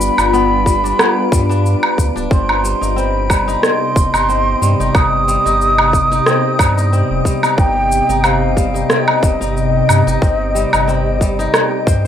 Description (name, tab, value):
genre	organic downtempo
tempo	91 BPM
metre	4/4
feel	swing 54% on 16ths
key	unclear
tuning	A4 = 442 Hz
part	breathy mellow bansuri	melody	0.0-12.1 s	Eb5 to Eb6	-18 LUFS	equal	ping-pong delay
part	ethereal airy pad	sustained chords	0.0-12.1 s	C3 to Eb5	-20 LUFS	left 1 dB	ensemble chorus, built-in reverb, sidechain pumping
part	kora	arpeggios	0.0-12.1 s	G3 to C5	-22 LUFS	left 1 dB	tape echo
part	warm sub bass	bass	0.0-12.1 s	D1 to G2	-19 LUFS	equal	sidechain pumping
part	electronic cabasa, woodblock and rim click	drums	0.0-12.0 s	none	-17 LUFS	equal	overdrive
part	wind-like tuned noise texture	texture	0.0-12.1 s	B3 to D7	-27 LUFS	left 1 dB	built-in reverb
part	electronic kick drum	drums	0.7-12.0 s	none	-15 LUFS	equal	overdrive
room	light reverb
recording	rough home demo mix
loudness	-12 LUFS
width	side -9 dB against mid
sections	0.0-12.1 A section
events	none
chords	0.0 G; 2.3 Cm